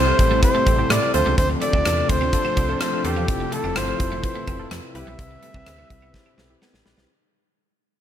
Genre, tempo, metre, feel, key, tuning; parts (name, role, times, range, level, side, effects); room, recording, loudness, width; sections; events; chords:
1980s-style pop; 126 BPM; 4/4; straight; A4 = 440 Hz
clear flugelhorn; melody; 0.0-6.6 s; G4 to E5; -24 LUFS; equal; tube saturation, ping-pong delay
mellow tine electric piano; accompaniment; 0.0-7.1 s; C4 to C5; -28 LUFS; left 5 dB
string machine, violas; sustained chords; 0.0-7.1 s; C3 to B4; -29 LUFS; right 1 dB; ensemble chorus
twelve-string electric guitar; riff; 0.0-7.1 s; F3 to D4; -32 LUFS; right 5 dB; ensemble chorus
slap-like FM bass; bass; 0.0-7.1 s; F1 to A2; -26 LUFS; equal
huge arena drum kit; drums; 0.2-7.1 s; hi-hat, kick drum, rim click, snare drum; -23 LUFS; equal; gated reverb
funky polysynth comp; stabs; 0.8-7.1 s; A3 to C5; -32 LUFS; right 6 dB; chorus
light reverb, studio reverb; -18 LUFS; side -10 dB against mid
0.0-7.1 A section
fade-out 0.0-7.1; drum fill 6.1-7.1
0.0 Am7; 1.1 Dm7; 3.3 Fmaj7; 5.0 Cmaj7